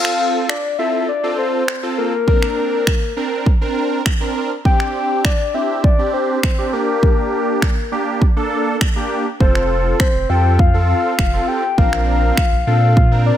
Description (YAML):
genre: dance-pop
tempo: 101 BPM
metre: 4/4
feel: straight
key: F major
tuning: A4 = 440 Hz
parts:
  - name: soft octave-layered synth lead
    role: melody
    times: 0.0-13.4 s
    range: Bb4 to G5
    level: -19 LUFS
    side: left 4 dB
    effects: chorus, ping-pong delay
  - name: big bright polysynth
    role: accompaniment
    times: 0.0-13.4 s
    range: Bb3 to Bb4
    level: -21 LUFS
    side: right 2 dB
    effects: sidechain pumping
  - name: house drum kit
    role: drums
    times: 0.0-13.1 s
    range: finger snaps, kick drum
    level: -16 LUFS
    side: equal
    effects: none
  - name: saturated sub bass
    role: bass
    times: 9.4-13.3 s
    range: F1 to Bb2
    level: -16 LUFS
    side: equal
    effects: sidechain pumping
room: little or no reverb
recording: none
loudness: -14 LUFS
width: side -11 dB against mid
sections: 0.0-13.4 A section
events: none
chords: 0.0 F; 2.3 Bbadd9; 4.7 Csus2; 6.7 Gm; 9.4 F; 11.8 Bbadd9